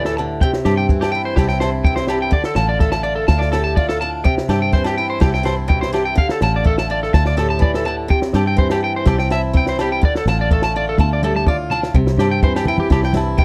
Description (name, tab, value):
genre	highlife guitar band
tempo	125 BPM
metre	4/4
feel	straight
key	C major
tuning	A4 = 441 Hz
part	picked swing-style acoustic guitar	accompaniment	0.0-13.4 s	G2 to G4	-26 LUFS	equal	none
part	electric guitar at the edge of break-up	arpeggios	0.0-13.4 s	G4 to A5	-23 LUFS	equal	slapback echo
part	fingered electric bass	bass	0.0-13.4 s	A1 to G2	-23 LUFS	equal	none
part	compact cocktail drum kit	drums	0.1-13.4 s	kick drum, snare drum, toms	-20 LUFS	equal	none
part	agogo bells	percussion	0.2-13.3 s	none	-31 LUFS	equal	none
part	congas	percussion	12.7-13.3 s	none	-24 LUFS	equal	none
room	little or no reverb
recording	dry, close 1970s-style studio recording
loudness	-17 LUFS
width	mono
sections	0.0-11.9 A section; 11.9-13.4 A section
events	drum fill 11.0-11.9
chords	0.4 C; 2.3 Dm; 4.3 C; 6.2 Dm; 8.1 C; 10.0 Dm; 11.9 C